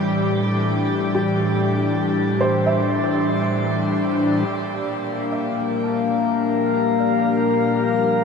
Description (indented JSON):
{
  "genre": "ambient",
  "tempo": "72 BPM",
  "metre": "3/4",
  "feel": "straight",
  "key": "G dorian",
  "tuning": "A4 = 439 Hz",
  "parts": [
    { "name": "airy breathy pad", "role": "sustained chords", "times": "0.0-8.2 s", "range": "A2 to G4", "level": "-21 LUFS", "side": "equal", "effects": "chorus" },
    { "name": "felt-muted upright piano", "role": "arpeggios", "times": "0.0-8.2 s", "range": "G4 to A5", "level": "-26 LUFS", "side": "right 1 dB", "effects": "ping-pong delay" },
    { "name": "organ-like drone", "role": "drone", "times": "0.0-4.6 s", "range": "G3 to G4", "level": "-30 LUFS", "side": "left 2 dB", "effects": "ensemble chorus, built-in reverb" },
    { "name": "drifting glass-harmonics texture", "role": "texture", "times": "0.0-8.2 s", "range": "Bb3 to D5", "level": "-23 LUFS", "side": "left 4 dB", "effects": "chorus, built-in reverb" }
  ],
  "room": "wet shimmer reverb, RT60 7.2 s",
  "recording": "nothing above 10.4 kHz",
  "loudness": "-18 LUFS",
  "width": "side -5 dB against mid",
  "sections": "0.0-4.5 A section; 4.5-8.2 B section",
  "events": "fade-in on analog synth pad 4.5-8.2; fade-in on felt piano 4.5-8.2",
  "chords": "0.0 Am7; 4.5 Gm7",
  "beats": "0.32 1.15 | 1.98 2.82 3.65 | 4.48 5.32 6.15 | 6.98 7.82"
}